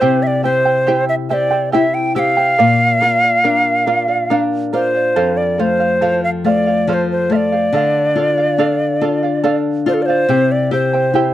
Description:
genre	andean folk, Andean ensemble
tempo	70 BPM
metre	3/4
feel	straight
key	unclear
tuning	A4 = 440 Hz
part	hollow quena	melody	0.0-11.3 s	A4 to G5	-15 LUFS	equal	none
part	charango	accompaniment	0.0-11.3 s	E4 to G5	-20 LUFS	right 7 dB	none
part	nylon-string guitar	accompaniment	0.0-11.3 s	F2 to G4	-18 LUFS	left 4 dB	none
room	little or no reverb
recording	dry, close 1970s-style studio recording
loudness	-13 LUFS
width	side -13 dB against mid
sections	0.0-11.3 A section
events	none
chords	0.0 C; 2.6 Bb; 5.2 F; 7.7 Dm; 10.3 C

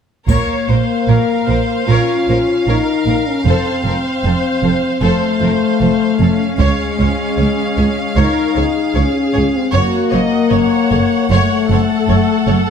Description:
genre	cinematic, epic orchestral film score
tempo	76 BPM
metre	4/4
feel	straight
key	Bb harmonic minor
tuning	A4 = 440 Hz
part	rich chamber violin section	melody	0.3-12.7 s	F5 to Gb5	-25 LUFS	equal	none
part	warm symphonic violin section	second line	0.3-12.6 s	Ab4 to Db5	-23 LUFS	left 2 dB	none
part	warm symphonic viola section	accompaniment	0.3-12.7 s	Db4 to Eb5	-22 LUFS	equal	none
part	mellow French horn section	sustained chords	0.3-12.7 s	Ab3 to F4	-16 LUFS	left 5 dB	none
part	rich chamber double bass section	bass	0.3-12.6 s	F1 to Db2	-19 LUFS	right 4 dB	none
part	rich symphonic cello section	bass	0.3-12.5 s	Db2 to Bb2	-19 LUFS	right 3 dB	none
part	taiko ensemble	drums	0.3-1.8, 6.6-8.1 s	none	-20 LUFS	equal	none
part	triangle	percussion	0.3-1.8 s	none	-40 LUFS	left 3 dB	none
room	moderate scoring stage reverb, RT60 1.6 s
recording	none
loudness	-12 LUFS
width	side -7 dB against mid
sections	0.3-12.7 A section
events	none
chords	0.3 Bbm; 3.5 F; 6.6 Db; 9.7 Gbm

